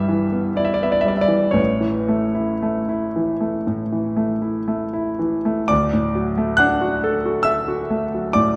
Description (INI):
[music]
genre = classical, romantic nocturne for solo piano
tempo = 55-69 BPM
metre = 4/4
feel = rubato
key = D major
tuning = A4 = 440 Hz
[part]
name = clear concert grand piano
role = solo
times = 0.0-8.6 s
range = A1 to F#6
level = -20 LUFS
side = equal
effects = none
[sound]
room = wet recital hall reverb, RT60 1.6 s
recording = lossy compression artefacts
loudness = -20 LUFS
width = mono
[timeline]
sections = 0.0-5.7 A section; 5.7-8.6 B section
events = none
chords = 0.0 Em/G; 1.6 A; 5.7 D